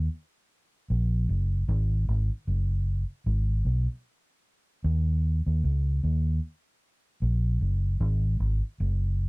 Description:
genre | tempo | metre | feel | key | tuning
reggae | 76 BPM | 4/4 | swing 58% on 16ths | unclear | A4 = 442 Hz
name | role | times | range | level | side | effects
vintage muted fingered electric bass | solo | 0.0-9.3 s | F#1 to D#2 | -24 LUFS | equal | none
room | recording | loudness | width
light reverb | dry, close 1970s-style studio recording, tape saturation | -25 LUFS | side -30 dB against mid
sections
0.0-8.0 A section; 8.0-9.3 B section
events
none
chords
none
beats
0.11 0.90 | 1.69 2.48 3.26 4.05 | 4.84 5.63 6.42 7.21 | 8.00 8.79

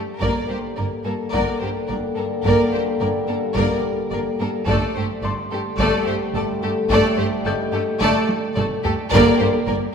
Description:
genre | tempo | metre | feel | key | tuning
cinematic, suspense film score | 54 BPM | 4/4 | straight | G harmonic minor | A4 = 441 Hz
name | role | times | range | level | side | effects
rich studio viola section | accompaniment | 0.0-9.8 s | A3 to Bb3 | -25 LUFS | right 1 dB | none
clear trombone section | sustained chords | 0.0-9.6 s | D3 to G3 | -28 LUFS | right 3 dB | none
mellow French horn section | sustained chords | 0.0-9.6 s | A3 to A4 | -26 LUFS | left 5 dB | none
clear baby grand piano | texture | 0.0-9.9 s | D4 to G6 | -35 LUFS | left 2 dB | none
rich studio violin section | melody | 0.2-9.8 s | A4 to D5 | -27 LUFS | left 4 dB | none
rich studio violin section | second line | 0.2-9.7 s | G4 to Bb4 | -26 LUFS | equal | none
rich chamber cello section | bass | 0.2-9.8 s | G2 | -28 LUFS | right 2 dB | none
rich chamber double bass section | bass | 0.2-9.8 s | G1 | -27 LUFS | right 4 dB | none
solo taiko drums | drums | 0.2-9.9 s | none | -30 LUFS | equal | none
room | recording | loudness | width
wet scoring stage reverb, RT60 1.8 s | minimal, uncompressed stereo recording | -18 LUFS | side -6 dB against mid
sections
0.0-9.9 A section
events
drum fill 8.0-9.1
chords
0.0 Gmadd9; 4.7 Dsus4/G; 9.1 Gmadd9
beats
| 0.23 1.35 2.46 3.56 | 4.68 5.79 6.90 8.02 | 9.13

